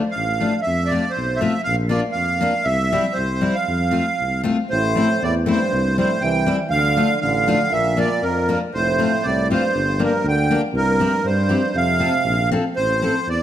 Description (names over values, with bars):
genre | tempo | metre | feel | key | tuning
alpine folk, alpine dance band | 119 BPM | 2/4 | rubato | F major | A4 = 440 Hz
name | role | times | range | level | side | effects
accordion | melody | 0.1-13.4 s | Bb4 to G5 | -21 LUFS | right 2 dB | light tremolo tuning
dark tuba | bass | 0.2-13.4 s | F1 to G2 | -23 LUFS | equal | none
picked steel-string acoustic guitar | accompaniment | 0.4-13.1 s | G3 to A4 | -23 LUFS | left 3 dB | none
warm euphonium | second line | 4.7-12.5 s | F2 to E3 | -25 LUFS | right 4 dB | slapback echo
room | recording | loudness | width
wet recital hall reverb, RT60 1.8 s | none | -17 LUFS | side -11 dB against mid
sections
0.0-4.7 A section; 4.7-12.8 B section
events
none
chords
0.0 Dm; 0.7 F; 1.7 Bb; 2.7 C; 3.7 F; 4.7 Am; 5.7 C; 6.7 Dm; 7.7 Bb; 8.7 F; 9.7 Gm; 10.7 C7; 11.7 F; 12.8 Am